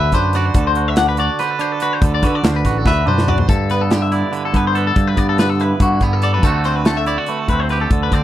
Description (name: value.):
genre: math rock and midwest emo.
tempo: 285 BPM (eighths).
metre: 7/8.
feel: straight.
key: G major.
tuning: A4 = 440 Hz.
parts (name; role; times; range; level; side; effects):
twangy electric guitar; accompaniment; 0.0-8.2 s; G2 to B4; -20 LUFS; right 7 dB; none.
clean electric guitar; arpeggios; 0.0-8.2 s; F#4 to F#5; -21 LUFS; left 6 dB; phaser.
growling picked electric bass; bass; 0.0-8.2 s; A1 to D3; -18 LUFS; left 1 dB; overdrive.
modern studio drum kit; drums; 0.1-8.2 s; hi-hat, kick drum, snare drum, toms; -18 LUFS; equal; none.
room: little or no reverb.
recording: dry, close 1970s-style studio recording.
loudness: -14 LUFS.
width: side -12 dB against mid.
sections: 0.0-3.5 A section; 3.5-8.2 B section.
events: drum fill 2.9-3.5.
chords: 0.0 D13; 3.5 G69; 6.4 D7.